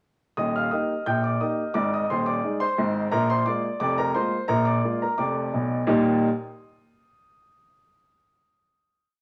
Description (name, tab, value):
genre	ragtime piano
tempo	87 BPM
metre	2/4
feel	straight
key	Eb major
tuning	A4 = 439 Hz
part	warm baby grand piano	solo	0.4-6.3 s	Eb1 to G6	-24 LUFS	equal	none
room	wet studio reverb, RT60 0.9 s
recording	none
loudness	-24 LUFS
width	mono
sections	0.4-5.9 A section; 5.9-7.3 final chord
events	none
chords	0.4 Eb; 1.8 Ab; 3.1 Bb7; 5.9 Eb